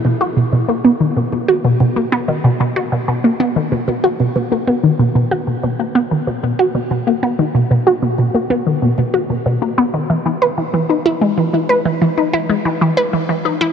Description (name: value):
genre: ambient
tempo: 94 BPM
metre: 4/4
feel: straight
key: B major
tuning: A4 = 441 Hz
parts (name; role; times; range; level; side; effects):
- resonant blip pluck; solo; 0.0-13.7 s; B2 to B4; -14 LUFS; equal; phaser, cassette tape, ping-pong delay
room: wet huge ambient reverb, RT60 7.5 s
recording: none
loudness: -14 LUFS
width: side -7 dB against mid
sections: 0.0-13.7 A section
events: none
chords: none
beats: 0.53 1.17 1.80 | 2.44 3.08 3.72 4.36 | 5.00 5.63 6.27 6.91 | 7.55 8.19 8.82 9.46 | 10.10 10.74 11.38 12.02 | 12.65 13.29